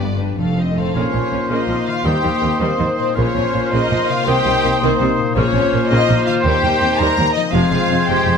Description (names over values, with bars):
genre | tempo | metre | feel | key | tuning
cinematic, heroic adventure film score | 109 BPM (dotted quarters) | 6/8 | straight | Bb dorian | A4 = 441 Hz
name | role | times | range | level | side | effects
warm symphonic violin section | melody | 0.0-8.4 s | C4 to F5 | -24 LUFS | left 3 dB | none
rich symphonic violin section | second line | 0.0-8.4 s | G4 to Bb5 | -22 LUFS | left 3 dB | none
rich studio viola section | accompaniment | 0.0-8.3 s | C3 to Eb4 | -25 LUFS | right 2 dB | none
concert harp | arpeggios | 0.0-8.4 s | F2 to C6 | -26 LUFS | left 12 dB | none
warm studio double bass section | bass | 0.0-8.3 s | F1 to Eb2 | -23 LUFS | right 3 dB | none
warm symphonic cello section | bass | 0.0-8.3 s | Eb2 to Eb3 | -23 LUFS | right 2 dB | none
clear oboe | second line | 0.9-8.4 s | C6 | -28 LUFS | right 1 dB | none
warm French horn section | sustained chords | 0.9-8.4 s | Ab3 to F4 | -25 LUFS | left 4 dB | none
warm trumpet | stabs | 0.9-8.4 s | C5 | -23 LUFS | right 3 dB | none
mellow clarinet | second line | 1.0-8.4 s | Bb3 to C4 | -27 LUFS | left 2 dB | none
mellow hollow silver concert flute | second line | 1.0-8.4 s | Eb6 to Ab6 | -26 LUFS | left 3 dB | none
room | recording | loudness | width
light reverb | close, detailed microphones | -14 LUFS | side -6 dB against mid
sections
1.0-8.4 A section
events
none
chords
0.4 F7; 1.0 Bbmadd9; 2.1 Eb6; 3.2 Bbmadd9; 4.3 Cm7; 5.4 Bbmadd9; 6.4 Eb6; 7.5 Fm